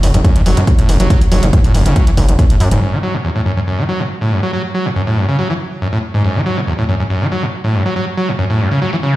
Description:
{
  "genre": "driving peak-time techno",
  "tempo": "140 BPM",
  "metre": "4/4",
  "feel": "straight",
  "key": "F# minor",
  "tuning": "A4 = 440 Hz",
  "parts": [
    { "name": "screaming distorted acid line", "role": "riff", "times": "0.0-9.2 s", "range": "E2 to F#3", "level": "-15 LUFS", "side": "equal", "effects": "distortion, chorus, vintage 12-bit sampler grit, sidechain pumping, digital delay" },
    { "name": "gritty driven synth bass", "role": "bass", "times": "0.0-2.8 s", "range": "F#1 to F#2", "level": "-12 LUFS", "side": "equal", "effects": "sidechain pumping" },
    { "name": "electronic hi-hat", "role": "drums", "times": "0.0-2.8 s", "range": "none", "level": "-27 LUFS", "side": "right 1 dB", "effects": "sidechain pumping on hats, low-pass filter on hats, low-pass filter on room" },
    { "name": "electronic kick drum", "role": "drums", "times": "0.2-2.5 s", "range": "none", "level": "-11 LUFS", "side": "equal", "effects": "none" }
  ],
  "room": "moderate stone room reverb, RT60 1.1 s",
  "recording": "played on a big sound system in a bare room, large studio reverb",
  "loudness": "-12 LUFS",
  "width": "side -16 dB against mid",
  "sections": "0.0-2.8 A section; 2.8-9.2 B section",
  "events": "none",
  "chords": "0.0 F#5"
}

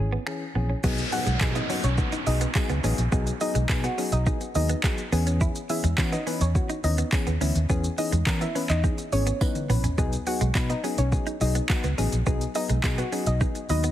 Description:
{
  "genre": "dance-pop",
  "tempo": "105 BPM",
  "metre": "4/4",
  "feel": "straight",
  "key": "B major",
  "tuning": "A4 = 440 Hz",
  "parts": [
    { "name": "soft electric-piano-like synth keys", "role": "accompaniment", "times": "0.0-13.9 s", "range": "E3 to B4", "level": "-31 LUFS", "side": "left 3 dB", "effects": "chorus, sidechain pumping" },
    { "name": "vintage muted fingered electric bass", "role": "bass", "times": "0.0-13.9 s", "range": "G#1 to E3", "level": "-25 LUFS", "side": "equal", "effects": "sidechain pumping" },
    { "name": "direct-recorded clean electric guitar", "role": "riff", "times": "0.1-13.9 s", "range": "G#3 to E4", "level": "-34 LUFS", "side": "right 5 dB", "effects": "wide subtle chorus" },
    { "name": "smooth R&B drum kit", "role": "drums", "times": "0.3-13.9 s", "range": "crash cymbal, finger snaps, handclaps, hi-hat, kick drum, shaker, toms", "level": "-27 LUFS", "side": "equal", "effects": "overdrive" },
    { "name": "downlifter", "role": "sound effects", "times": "0.8-5.4 s", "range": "none", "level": "-34 LUFS", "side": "equal", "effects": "none" },
    { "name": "soft round pluck", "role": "melody", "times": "1.1-13.9 s", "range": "B3 to F#5", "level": "-31 LUFS", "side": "equal", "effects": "chorus, sidechain pumping, ping-pong delay" },
    { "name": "tambourine", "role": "percussion", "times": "1.4-13.0 s", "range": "none", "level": "-42 LUFS", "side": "right 9 dB", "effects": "none" }
  ],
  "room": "little or no reverb",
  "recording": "heavily compressed radio sound, multiband compression",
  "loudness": "-22 LUFS",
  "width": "side -12 dB against mid",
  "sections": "0.8-13.9 A section",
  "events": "drop 0.8-13.9; drum fill 9.4-10.0",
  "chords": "0.0 E6; 0.8 B6; 5.1 E6; 10.0 B6"
}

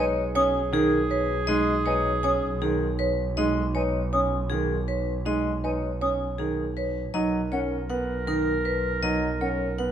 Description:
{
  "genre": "classical, minimalist pattern music",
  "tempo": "159 BPM",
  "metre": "5/4",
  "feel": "straight",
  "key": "unclear",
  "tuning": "A4 = 440 Hz",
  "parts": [
    { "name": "vibraphone with hard mallets", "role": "melody", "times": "0.0-9.9 s", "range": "G#4 to G#5", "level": "-31 LUFS", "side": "left 6 dB", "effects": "none" },
    { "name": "clear clarinet", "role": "second line", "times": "0.0-3.1, 7.1-9.9 s", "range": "G#4 to A#4", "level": "-30 LUFS", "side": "equal", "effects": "none" },
    { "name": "clear concert grand piano", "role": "accompaniment", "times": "0.0-9.9 s", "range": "D#3 to D#4", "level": "-30 LUFS", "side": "left 1 dB", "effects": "none" },
    { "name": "concert flute", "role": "arpeggios", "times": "0.0-9.5 s", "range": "F#5 to D#6", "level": "-31 LUFS", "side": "left 3 dB", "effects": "none" },
    { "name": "marimba with medium mallets", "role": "arpeggios", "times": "0.0-9.9 s", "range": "D#4 to C#5", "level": "-28 LUFS", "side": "right 6 dB", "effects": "none" },
    { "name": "rich double bass", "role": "bass", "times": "0.0-9.9 s", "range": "B1", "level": "-30 LUFS", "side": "right 1 dB", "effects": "none" }
  ],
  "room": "moderate recital hall reverb, RT60 1.6 s",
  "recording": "none",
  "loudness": "-23 LUFS",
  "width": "side -9 dB against mid",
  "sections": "0.0-9.9 A section",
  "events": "none",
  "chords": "0.0 G#m/B; 7.1 Bmaj7"
}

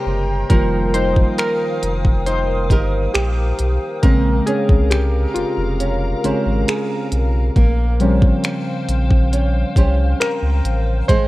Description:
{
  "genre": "contemporary R&B",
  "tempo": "68 BPM",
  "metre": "4/4",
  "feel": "straight",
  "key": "Bb dorian",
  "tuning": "A4 = 444 Hz",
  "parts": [
    { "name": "warm analog keys", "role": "accompaniment", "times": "0.0-11.3 s", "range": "C3 to C5", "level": "-21 LUFS", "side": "left 1 dB", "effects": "chorus" },
    { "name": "glassy FM pad", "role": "sustained chords", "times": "0.0-11.3 s", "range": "Bb4 to Eb6", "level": "-28 LUFS", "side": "left 2 dB", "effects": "ensemble chorus, built-in reverb" },
    { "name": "flamenco guitar", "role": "arpeggios", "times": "0.0-11.3 s", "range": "F3 to C5", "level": "-26 LUFS", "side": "right 4 dB", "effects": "none" },
    { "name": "saturated sub bass", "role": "bass", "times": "0.1-11.3 s", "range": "F1 to Db2", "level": "-19 LUFS", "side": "equal", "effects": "none" },
    { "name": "trap drum kit", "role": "drums", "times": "0.5-11.3 s", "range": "finger snaps, hi-hat, kick drum", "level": "-16 LUFS", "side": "equal", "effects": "none" }
  ],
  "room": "little or no reverb",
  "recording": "worn, warbling old tape, cassette tape, warbly pitch drift",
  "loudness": "-15 LUFS",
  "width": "side -18 dB against mid",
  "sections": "0.0-11.3 A section",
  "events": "synth keys solo 0.0-11.3",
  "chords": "0.0 Abmaj9; 0.5 F9sus4; 4.0 Bbm9; 7.6 Bbm69"
}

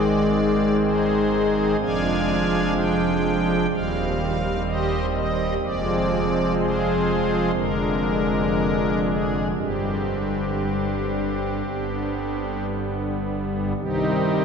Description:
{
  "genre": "classical, chorale-style piece for pipe organ",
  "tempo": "55-64 BPM",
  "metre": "4/4",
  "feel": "rubato",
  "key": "C minor",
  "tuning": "A4 = 440 Hz",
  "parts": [
    { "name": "pipe organ, strings celeste", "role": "solo", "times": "0.0-14.4 s", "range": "Eb1 to Ab5", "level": "-20 LUFS", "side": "equal", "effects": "none" }
  ],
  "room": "wet cathedral reverb, RT60 4.6 s",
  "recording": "heard from further back in the room",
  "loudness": "-20 LUFS",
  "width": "side -6 dB against mid",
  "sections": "0.0-13.8 A section",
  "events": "none",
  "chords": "0.0 Ab; 1.8 Ddim/F; 3.7 Cm/Eb; 5.6 Fm; 7.5 Ddim/F; 9.6 Gsus4; 11.7 G; 13.8 Cm"
}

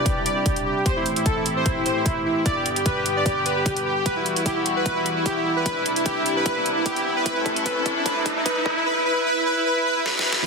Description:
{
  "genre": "heavy wobble dubstep",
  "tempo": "150 BPM",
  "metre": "4/4",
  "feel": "swing 53% on 16ths, half-time",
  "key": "unclear",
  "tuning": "A4 = 439 Hz",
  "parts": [
    { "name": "soft supersaw", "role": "melody", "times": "0.0-10.4 s", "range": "E4 to D5", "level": "-22 LUFS", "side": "right 1 dB", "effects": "ping-pong delay" },
    { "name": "rich chamber string section", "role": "sustained chords", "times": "0.0-8.8 s", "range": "E2 to A4", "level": "-28 LUFS", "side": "left 3 dB", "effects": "sidechain pumping, low-pass filter" },
    { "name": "dubstep drum kit", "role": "drums", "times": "0.1-10.4 s", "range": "hi-hat, snare drum", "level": "-26 LUFS", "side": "right 1 dB", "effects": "overdrive" },
    { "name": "electronic kick drum", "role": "drums", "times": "0.1-8.7 s", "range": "none", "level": "-26 LUFS", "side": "equal", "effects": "overdrive" },
    { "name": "riser", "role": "sound effects", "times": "5.8-8.9 s", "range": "none", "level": "-30 LUFS", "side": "equal", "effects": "none" }
  ],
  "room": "moderate digital room reverb, RT60 1.3 s, digital ambience",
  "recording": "dense, heavily limited modern master, high-pass filter",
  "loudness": "-20 LUFS",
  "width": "side -4 dB against mid",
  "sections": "0.0-10.5 A section",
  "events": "build-up 0.0-10.5; filter sweep on string section 0.0-10.5; filter sweep 0.0-10.5; drum fill 4.1-8.9, 10.1-10.5; riser 5.8-8.9",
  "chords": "0.0 Cadd9; 0.9 Am7; 2.5 G; 4.1 Emadd9; 5.7 Cadd9; 7.3 Am7; 8.9 N.C."
}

